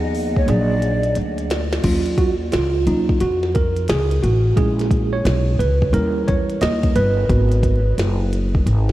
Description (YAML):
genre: hip hop, jazz-hop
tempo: 88 BPM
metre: 4/4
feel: swing 64% on 16ths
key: Eb minor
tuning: A4 = 440 Hz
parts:
  - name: mellow hollow jazz flute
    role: melody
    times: 0.0-1.2 s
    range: Db5 to D5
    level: -27 LUFS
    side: left 1 dB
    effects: diffuse ambient delay
  - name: mellow tine electric piano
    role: accompaniment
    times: 0.0-7.9 s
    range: F3 to Eb5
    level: -21 LUFS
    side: right 2 dB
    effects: medium stereo tremolo
  - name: upright bass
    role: bass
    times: 0.0-8.9 s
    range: Gb1 to F2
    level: -19 LUFS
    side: equal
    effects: none
  - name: glitchy drum kit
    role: drums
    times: 0.1-8.9 s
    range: crash cymbal, hi-hat, kick drum, snare drum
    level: -22 LUFS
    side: equal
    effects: none
room: moderate huge ambient reverb, RT60 8.0 s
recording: dreamy mix soaked in reverb, vinyl crackle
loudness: -16 LUFS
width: side -15 dB against mid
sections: 0.0-1.8 A section; 1.8-8.9 B section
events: drum fill 0.5-1.8; tine electric piano solo 1.8-8.9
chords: 0.5 Bbaug7; 1.8 Ebm9; 4.6 Bbm7b5; 5.9 Eb7b9; 7.3 Abm9